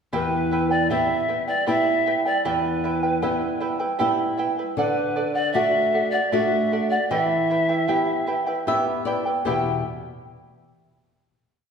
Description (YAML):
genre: andean folk, Andean ensemble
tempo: 77 BPM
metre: 3/4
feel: straight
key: E minor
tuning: A4 = 440 Hz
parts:
  - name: reedy pan flute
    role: melody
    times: 0.1-9.8 s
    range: B4 to G5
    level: -24 LUFS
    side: left 1 dB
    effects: none
  - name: charango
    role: accompaniment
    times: 0.1-9.8 s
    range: E4 to G5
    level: -24 LUFS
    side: right 3 dB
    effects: none
  - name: flamenco guitar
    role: accompaniment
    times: 0.1-9.8 s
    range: E2 to E5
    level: -25 LUFS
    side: left 1 dB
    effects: none
room: wet recital hall reverb, RT60 1.7 s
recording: recorded in a church or concert hall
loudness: -20 LUFS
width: side -6 dB against mid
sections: 0.1-9.5 A section; 9.5-11.7 final chord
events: nylon-string guitar fill 8.3-9.5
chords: 0.1 Em; 4.8 D; 7.1 Em